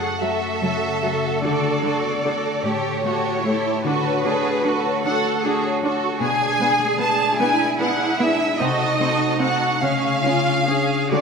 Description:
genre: classical, slow romantic movement for symphony orchestra.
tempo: 50 BPM (dotted quarters).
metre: 6/8.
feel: rubato.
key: unclear.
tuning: A4 = 440 Hz.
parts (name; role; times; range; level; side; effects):
warm studio violin section; melody; 0.0-11.2 s; B4 to A5; -22 LUFS; equal; none.
warm symphonic violin section; second line; 0.0-11.2 s; C#4 to A4; -26 LUFS; right 2 dB; none.
concert harp; arpeggios; 0.0-11.2 s; F#2 to Eb5; -26 LUFS; left 7 dB; none.
rich symphonic cello section; bass; 0.0-11.2 s; C#4 to A4; -25 LUFS; right 4 dB; none.
rich symphonic viola section; accompaniment; 0.2-11.2 s; D3 to D4; -27 LUFS; right 2 dB; none.
room: wet scoring stage reverb, RT60 1.9 s.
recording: none.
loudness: -18 LUFS.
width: side -5 dB against mid.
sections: 0.0-11.2 A section.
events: none.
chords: 0.0 F#m; 1.4 D; 2.6 A7; 3.8 Dmaj7; 6.2 G#dim/B; 8.6 Cdim7; 9.8 C#.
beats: 0.21 | 1.43 2.63 | 3.84 5.04 | 6.21 7.38 | 8.59 9.81 | 11.10.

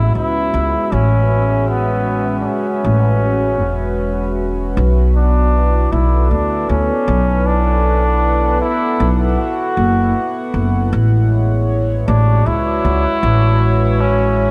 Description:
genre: ambient dub.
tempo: 78 BPM.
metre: 4/4.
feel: swing 58% on 16ths.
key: B dorian.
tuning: A4 = 441 Hz.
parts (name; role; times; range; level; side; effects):
bright trombone; melody; 0.0-14.5 s; B3 to F#4; -21 LUFS; equal; dub echo.
warm analog pad; sustained chords; 0.0-14.5 s; G#3 to F#5; -23 LUFS; equal; chorus.
upright bass; bass; 0.0-14.5 s; E1 to D2; -18 LUFS; equal; tube saturation.
room: light reverb, studio ambience.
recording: echo-heavy mix.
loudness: -16 LUFS.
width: mono.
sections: 0.0-4.8 A section; 4.8-14.5 B section.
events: none.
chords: 0.0 Amaj7; 4.8 Bm7; 10.9 Amaj7.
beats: 0.15 0.92 | 1.69 2.46 3.23 4.00 | 4.77 5.54 6.31 7.08 | 7.85 8.62 9.38 10.15 | 10.92 11.69 12.46 13.23 | 14.00.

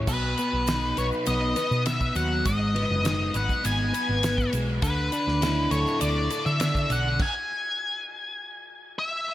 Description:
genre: psychedelic rock.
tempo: 101 BPM.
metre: 4/4.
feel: straight.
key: unclear.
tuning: A4 = 439 Hz.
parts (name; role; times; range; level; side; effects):
overdriven electric guitar; riff; 0.0-7.2 s; G#2 to B4; -28 LUFS; left 1 dB; rotary speaker.
hollow-body short-scale picked electric bass; bass; 0.0-7.2 s; F#1 to D3; -27 LUFS; equal; none.
octave-fuzz lead guitar; melody; 0.1-9.3 s; B4 to G#5; -28 LUFS; left 1 dB; distortion, tape echo.
damped 70s drum kit; drums; 0.1-7.3 s; crash cymbal, kick drum, ride cymbal, snare drum; -31 LUFS; equal; none.
tube shaker; percussion; 0.1-7.0 s; none; -40 LUFS; right 20 dB; none.
room: light reverb, small room ambience.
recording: none.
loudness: -23 LUFS.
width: side -14 dB against mid.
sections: 0.1-9.3 A section.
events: stop 7.2-9.3.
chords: 0.1 B; 2.5 G#m; 4.8 Dsus2; 7.2 N.C..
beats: | 0.08 0.68 1.27 1.86 | 2.46 3.05 3.64 4.23 | 4.83 5.42 6.01 6.61 | 7.20 7.79 8.39 8.98.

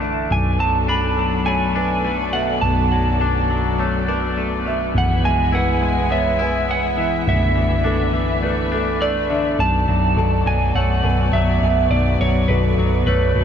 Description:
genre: post-rock.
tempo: 103 BPM.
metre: 4/4.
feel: straight.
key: B dorian.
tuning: A4 = 440 Hz.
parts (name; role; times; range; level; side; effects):
felt-muted upright piano; arpeggios; 0.0-13.4 s; A4 to E5; -29 LUFS; right 4 dB; lush chorus, ping-pong delay.
twangy electric guitar; arpeggios; 0.0-13.4 s; B1 to E4; -22 LUFS; left 4 dB; wide subtle chorus, ping-pong delay.
hollow-body short-scale picked electric bass; bass; 0.0-13.4 s; B0; -20 LUFS; equal; none.
electric slide guitar; melody; 0.3-13.4 s; B4 to B5; -22 LUFS; right 2 dB; lush chorus, ping-pong delay.
muted studio string section; sustained chords; 0.3-13.4 s; B3 to G#5; -28 LUFS; left 2 dB; none.
room: moderate huge ambient reverb, RT60 6.3 s.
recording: dreamy mix soaked in reverb, nothing above 10.9 kHz.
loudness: -16 LUFS.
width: side -8 dB against mid.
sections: 0.0-9.6 A section; 9.6-13.4 B section.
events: none.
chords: 0.3 Bm7; 5.0 E/B; 7.3 Dsus2/B; 9.6 Bm7.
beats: | 0.31 0.89 1.47 2.05 | 2.63 3.21 3.79 4.37 | 4.95 5.53 6.11 6.69 | 7.27 7.85 8.43 9.01 | 9.59 10.17 10.75 11.33 | 11.91 12.49 13.07.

